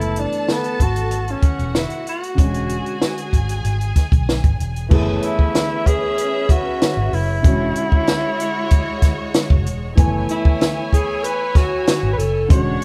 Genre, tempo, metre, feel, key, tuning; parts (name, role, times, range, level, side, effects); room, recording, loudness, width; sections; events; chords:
lush 1970s-style soul; 95 BPM; 4/4; straight; F# minor; A4 = 438 Hz
breathy tenor saxophone; melody; 0.0-12.8 s; B3 to C#5; -25 LUFS; equal
clear studio string section; second line; 0.0-12.8 s; G#3 to A5; -30 LUFS; equal
dark grand piano; accompaniment; 0.0-12.8 s; D3 to G#5; -29 LUFS; equal
vintage muted fingered electric bass; bass; 0.0-12.8 s; E1 to B1; -25 LUFS; equal
compact cocktail drum kit; drums; 0.0-12.8 s; crash cymbal, hi-hat, kick drum, snare drum; -18 LUFS; equal
moderate large studio reverb, RT60 0.8 s; band playing live in one room; -18 LUFS; mono
0.0-4.9 A section; 4.9-12.8 B section
0.0 F#m11; 2.4 E13; 4.9 F#m11; 7.4 E13; 10.0 F#m11